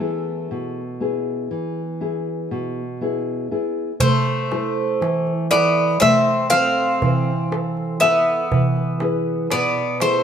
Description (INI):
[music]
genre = greek folk, Greek bouzouki band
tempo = 120 BPM (eighths)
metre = 9/8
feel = straight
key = A harmonic minor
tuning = A4 = 440 Hz
[part]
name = Greek bouzouki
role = melody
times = 0.0-10.2 s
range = A3 to F5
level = -19 LUFS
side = equal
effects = none
[part]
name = nylon-string guitar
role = accompaniment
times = 0.0-10.2 s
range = B2 to E5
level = -23 LUFS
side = equal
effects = none
[part]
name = Greek bouzouki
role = second line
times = 4.0-10.2 s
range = A3 to C4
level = -25 LUFS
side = left 2 dB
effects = none
[part]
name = darbuka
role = percussion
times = 4.0-10.2 s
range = none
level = -23 LUFS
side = right 2 dB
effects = none
[sound]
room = moderate plate reverb, RT60 2.8 s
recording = minimal, uncompressed stereo recording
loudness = -18 LUFS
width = side -8 dB against mid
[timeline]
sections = 0.0-4.0 A section; 4.0-10.2 B section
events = none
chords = 0.0 E; 4.0 Am; 8.5 E